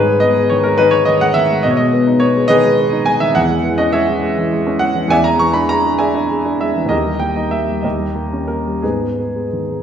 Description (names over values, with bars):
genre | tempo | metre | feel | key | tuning
classical, romantic character piece for solo piano | 58-70 BPM (dotted quarters) | 6/8 | rubato | G# minor | A4 = 441 Hz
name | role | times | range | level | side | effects
warm grand piano | solo | 0.0-9.8 s | D#2 to C#6 | -13 LUFS | equal | none
room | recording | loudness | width
wet recital hall reverb, RT60 1.7 s | heard from further back in the room | -13 LUFS | side -8 dB against mid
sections
0.0-9.8 A section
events
none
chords
0.0 G#m; 1.7 G#m/B; 3.4 C#m/E; 5.1 E7; 6.9 D#; 7.8 D#7; 8.8 G#m